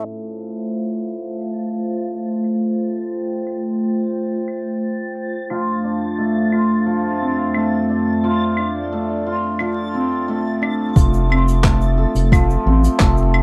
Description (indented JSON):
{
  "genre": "folktronica",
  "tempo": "88 BPM",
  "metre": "4/4",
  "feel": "straight",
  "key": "F major",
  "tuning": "A4 = 440 Hz",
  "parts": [
    { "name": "hammered dulcimer", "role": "arpeggios", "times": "0.0-13.4 s", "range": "A2 to A4", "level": "-25 LUFS", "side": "equal", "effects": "vintage 12-bit sampler grit, tape echo" },
    { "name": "soft brush drum kit", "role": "drums", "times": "0.0-13.4 s", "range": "claves, handclaps, hi-hat, shaker", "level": "-26 LUFS", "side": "equal", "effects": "low-pass filter on hats, low-pass filter on perc, low-pass filter on snare, low-pass filter on room" },
    { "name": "warbly tape-like pad", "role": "sustained chords", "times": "0.1-10.9 s", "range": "F2 to G5", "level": "-24 LUFS", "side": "equal", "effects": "chorus, built-in reverb" },
    { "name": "backwards swelling texture", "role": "texture", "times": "3.0-11.0 s", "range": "A6", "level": "-38 LUFS", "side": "equal", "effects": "built-in reverb" },
    { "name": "round analog bass", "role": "bass", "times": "11.0-13.4 s", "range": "F1 to A1", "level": "-18 LUFS", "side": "equal", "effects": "none" },
    { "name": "electronic kick drum", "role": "drums", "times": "11.0-13.1 s", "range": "none", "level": "-18 LUFS", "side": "equal", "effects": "none" }
  ],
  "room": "light reverb",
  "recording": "vinyl crackle, low-pass filter",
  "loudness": "-19 LUFS",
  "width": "mono",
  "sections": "0.1-11.0 A section; 11.0-13.4 B section",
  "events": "filter sweep 0.1-11.0",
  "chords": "0.1 F; 5.5 Dm7/F"
}